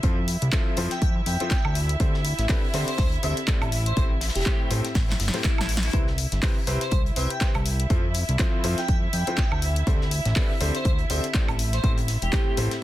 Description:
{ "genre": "piano house", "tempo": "122 BPM", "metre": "4/4", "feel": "swing 57% on 16ths", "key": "unclear", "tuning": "A4 = 441 Hz", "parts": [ { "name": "dark studio violin section", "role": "sustained chords", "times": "0.0-12.8 s", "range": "E4 to E5", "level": "-34 LUFS", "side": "right 1 dB", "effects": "sidechain pumping" }, { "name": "clear upright piano", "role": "riff", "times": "0.0-12.7 s", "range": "A2 to C5", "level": "-32 LUFS", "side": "left 1 dB", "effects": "sidechain pumping, dub echo" }, { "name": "fat analog bass", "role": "bass", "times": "0.0-12.7 s", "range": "E1 to F2", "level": "-26 LUFS", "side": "equal", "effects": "sidechain pumping" }, { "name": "electronic kick drum", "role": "drums", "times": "0.0-12.4 s", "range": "none", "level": "-24 LUFS", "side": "equal", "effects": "small room ambience" }, { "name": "house drum kit", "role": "drums", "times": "0.0-12.8 s", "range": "handclaps, hi-hat, snare drum, woodblock", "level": "-30 LUFS", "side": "left 1 dB", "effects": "small room ambience" }, { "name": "modern studio drum kit", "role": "drums", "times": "0.0-12.8 s", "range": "hi-hat, snare drum", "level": "-39 LUFS", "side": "left 3 dB", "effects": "none" }, { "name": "airy dreamy lead", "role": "melody", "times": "0.9-12.6 s", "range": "E4 to G5", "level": "-34 LUFS", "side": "equal", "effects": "chorus, dub echo" } ], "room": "small room reverb", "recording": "dense, heavily limited modern master", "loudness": "-21 LUFS", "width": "side -14 dB against mid", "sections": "0.0-12.8 A section", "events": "drum fill 5.0-5.9", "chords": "0.0 Fmaj7; 1.8 D7sus4; 3.7 Am7; 5.9 Cmaj7; 7.9 Fmaj7; 9.6 D7sus4; 11.6 Am7", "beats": "| 0.03 0.53 1.02 1.51 | 2.00 2.49 2.98 3.48 | 3.97 4.46 4.95 5.44 | 5.94 6.43 6.92 7.41 | 7.90 8.39 8.89 9.38 | 9.87 10.36 10.85 11.35 | 11.84 12.33 12.82" }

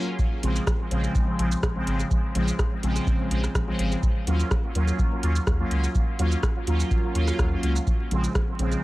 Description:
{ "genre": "dub techno", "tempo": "125 BPM", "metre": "4/4", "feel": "straight", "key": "Bb minor", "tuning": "A4 = 438 Hz", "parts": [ { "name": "resonant sweep polysynth", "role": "stabs", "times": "0.0-8.8 s", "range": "Db3 to F4", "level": "-27 LUFS", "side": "equal", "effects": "chorus, phaser, dub echo" }, { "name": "booming analog drum machine", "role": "drums", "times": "0.2-8.8 s", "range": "hi-hat, rim click, shaker", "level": "-33 LUFS", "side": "equal", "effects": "dub echo" }, { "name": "electronic kick drum", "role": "drums", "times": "0.2-8.5 s", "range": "none", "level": "-25 LUFS", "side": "equal", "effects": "none" }, { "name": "soft dub sub bass", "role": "bass", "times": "0.4-8.8 s", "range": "Ab1 to Eb2", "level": "-25 LUFS", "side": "equal", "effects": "tube saturation, sidechain pumping" } ], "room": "digital ambience", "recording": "dry, gritty hardware recording, vinyl crackle", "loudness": "-22 LUFS", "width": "side -18 dB against mid", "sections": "0.2-8.8 A section", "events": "break 0.0", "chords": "0.2 Bbm9; 4.0 Ebm9; 7.9 Bbm9", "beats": "| 0.19 0.67 1.15 1.63 | 2.11 2.59 3.07 3.55 | 4.03 4.51 4.99 5.47 | 5.95 6.43 6.91 7.39 | 7.87 8.35 8.83" }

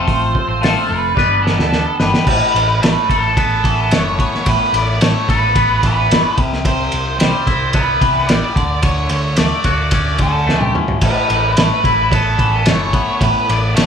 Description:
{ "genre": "psychedelic rock", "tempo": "110 BPM", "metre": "4/4", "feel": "straight", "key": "unclear", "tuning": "A4 = 440 Hz", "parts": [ { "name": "octave-fuzz lead guitar", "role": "melody", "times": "0.0-13.9 s", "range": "A4 to D5", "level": "-18 LUFS", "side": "right 2 dB", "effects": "distortion" }, { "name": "twangy electric guitar", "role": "riff", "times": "0.0-13.9 s", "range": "A2 to B4", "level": "-19 LUFS", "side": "left 4 dB", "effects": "phaser" }, { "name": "picked electric bass", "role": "bass", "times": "0.0-13.9 s", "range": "F1 to D2", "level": "-20 LUFS", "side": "equal", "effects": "none" }, { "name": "cloth-damped thuddy drum kit", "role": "drums", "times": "0.1-13.9 s", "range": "crash cymbal, hi-hat, kick drum, ride cymbal, snare drum, toms", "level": "-17 LUFS", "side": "equal", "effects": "none" } ], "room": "moderate large studio reverb, RT60 1.3 s", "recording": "band playing live in one room", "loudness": "-12 LUFS", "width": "side -7 dB against mid", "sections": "0.0-2.3 A section; 2.3-13.9 B section", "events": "drum fill 1.2-2.3, 10.5-11.0", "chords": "0.0 F; 1.2 G; 2.3 Asus2; 6.4 Cmaj7; 8.6 Dmaj7; 11.0 Asus2", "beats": "| 0.09 0.63 1.18 1.73 | 2.28 2.82 3.37 3.92 | 4.46 5.01 5.56 6.10 | 6.65 7.20 7.74 8.29 | 8.84 9.38 9.93 10.48 | 11.02 11.57 12.12 12.66 | 13.21 13.76" }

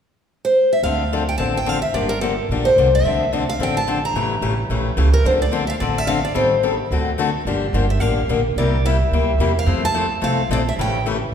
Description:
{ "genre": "acoustic string swing (jazz manouche)", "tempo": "217 BPM", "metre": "4/4", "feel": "swing 56% on 8ths", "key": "D minor", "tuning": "A4 = 441 Hz", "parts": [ { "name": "picked steel-string acoustic guitar", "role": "melody", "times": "0.4-11.1 s", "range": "A4 to Bb5", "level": "-20 LUFS", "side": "equal", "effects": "none" }, { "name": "picked acoustic archtop guitar", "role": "accompaniment", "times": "0.8-11.2 s", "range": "C3 to A4", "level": "-21 LUFS", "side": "left 4 dB", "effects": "none" }, { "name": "upright bass", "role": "bass", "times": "0.8-11.2 s", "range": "G1 to F2", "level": "-21 LUFS", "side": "right 1 dB", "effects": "none" } ], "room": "wet recital hall reverb, RT60 1.7 s", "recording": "recorded in a church or concert hall", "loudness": "-16 LUFS", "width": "side -8 dB against mid", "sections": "0.8-5.3 A section; 5.3-11.3 B section", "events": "none", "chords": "0.0 N.C.; 0.8 Dm7; 1.9 Gm9; 3.0 Dm9; 4.2 A7b9; 5.3 Dm7; 6.4 Am7b5; 6.9 D7; 7.5 Gm7; 8.6 C7; 9.7 Fmaj7; 10.8 A7", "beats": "0.01 0.28 0.56 | 0.83 1.11 1.39 1.66 | 1.94 2.22 2.49 2.77 | 3.05 3.32 3.60 3.88 | 4.15 4.43 4.71 4.98 | 5.26 5.53 5.81 6.09 | 6.36 6.64 6.92 7.19 | 7.47 7.75 8.02 8.30 | 8.57 8.85 9.13 9.40 | 9.68 9.96 10.23 10.51 | 10.78 11.06" }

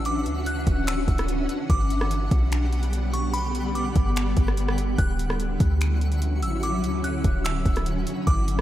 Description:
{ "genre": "hip hop, atmospheric cloud-rap", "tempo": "146 BPM", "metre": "4/4", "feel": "half-time", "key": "D major", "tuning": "A4 = 440 Hz", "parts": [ { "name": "delicate synth tine bell", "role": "melody", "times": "0.0-8.6 s", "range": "B5 to F#6", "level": "-33 LUFS", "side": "right 1 dB", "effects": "chorus, tape echo" }, { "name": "granular cloud pad", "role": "sustained chords", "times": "0.0-8.6 s", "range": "D3 to F#5", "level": "-28 LUFS", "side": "equal", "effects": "built-in reverb, ensemble chorus, sidechain pumping" }, { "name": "clean 808-style bass", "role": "bass", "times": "0.0-8.6 s", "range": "D1 to D2", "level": "-25 LUFS", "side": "equal", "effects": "none" }, { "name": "twinkling granular texture", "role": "texture", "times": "0.0-8.6 s", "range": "F#4 to C#7", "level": "-37 LUFS", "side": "equal", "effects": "built-in reverb" }, { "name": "smooth R&B drum kit", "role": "drums", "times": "0.1-8.6 s", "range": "finger snaps, hi-hat, kick drum, rim click", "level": "-26 LUFS", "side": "equal", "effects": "overdrive" } ], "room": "light reverb", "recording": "none", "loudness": "-22 LUFS", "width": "side -13 dB against mid", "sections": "0.0-8.6 A section", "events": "none", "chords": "0.0 Dmaj9; 1.7 Gmaj7; 5.0 Dmaj9", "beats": "| 0.05 0.46 0.88 1.29 | 1.70 2.11 2.52 2.93 | 3.34 3.75 4.16 4.57 | 4.99 5.40 5.81 6.22 | 6.63 7.04 7.45 7.86 | 8.27" }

